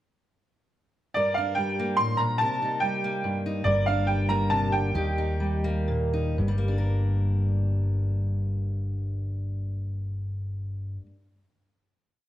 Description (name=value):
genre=indie folk with a building arrangement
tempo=115-144 BPM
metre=3/4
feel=straight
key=G minor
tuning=A4 = 440 Hz
part: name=bright upright piano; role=melody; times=1.1-5.8 s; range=D5 to C6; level=-26 LUFS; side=right 2 dB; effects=none
part: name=fingerpicked steel-string acoustic guitar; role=accompaniment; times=1.2-11.2 s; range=G2 to Bb4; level=-30 LUFS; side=left 1 dB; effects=none
part: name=picked electric bass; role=bass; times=3.7-11.0 s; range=G1 to Eb2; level=-26 LUFS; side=equal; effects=none
room=moderate large studio reverb, RT60 1.2 s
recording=band playing live in one room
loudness=-24 LUFS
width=side -13 dB against mid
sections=1.2-6.4 verse; 6.4-9.5 final chord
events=slowing down 3.7-6.4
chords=1.2 Gm; 2.4 Cm7; 3.7 Gm; 4.9 Eb; 6.4 Gm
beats=| 1.15 1.57 1.99 | 2.40 2.82 3.24 | 3.66 4.08 4.50 | 4.95 5.40 5.88 | 6.39 6.91 7.43 | 7.95 8.47 8.99